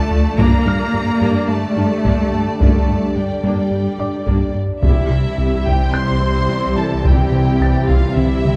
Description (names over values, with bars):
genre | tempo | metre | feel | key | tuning
cinematic, hybrid orchestral and electronic film score | 108 BPM | 4/4 | straight | unclear | A4 = 440 Hz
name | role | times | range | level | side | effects
clear symphonic violin section | melody | 0.0-8.6 s | D5 to C6 | -30 LUFS | equal | none
rich studio violin section | second line | 0.0-8.6 s | E4 to Bb5 | -31 LUFS | equal | none
rich symphonic viola section | accompaniment | 0.0-8.6 s | Bb3 to G4 | -31 LUFS | equal | none
bright trombone section | sustained chords | 0.0-8.6 s | D3 to A3 | -31 LUFS | equal | none
mellow French horn section | sustained chords | 0.0-8.6 s | C4 to G4 | -30 LUFS | equal | none
warbly tape-like pad | sustained chords | 0.0-8.6 s | F3 to E5 | -30 LUFS | equal | none
rich symphonic cello section | bass | 0.0-8.6 s | C3 to Bb3 | -24 LUFS | equal | none
felt-muted upright piano | texture | 0.0-8.6 s | D5 to A6 | -34 LUFS | equal | digital delay
smooth synth bass | riff | 0.1-8.6 s | C2 to G3 | -24 LUFS | equal | none
harp-like synth pluck | arpeggios | 0.4-8.6 s | C3 to G4 | -29 LUFS | equal | none
rich symphonic double bass section | bass | 0.4-8.6 s | C2 to G2 | -25 LUFS | equal | none
taiko ensemble | drums | 0.4-8.6 s | none | -21 LUFS | equal | none
room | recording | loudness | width
moderate concert hall reverb, RT60 2.3 s | dark, warm production | -17 LUFS | mono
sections
0.0-4.8 A section; 4.8-8.6 B section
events
none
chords
0.4 Gm; 4.8 C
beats
| 0.38 0.94 1.50 2.05 | 2.61 3.16 3.72 4.27 | 4.83 5.38 5.94 6.50 | 7.05 7.61 8.16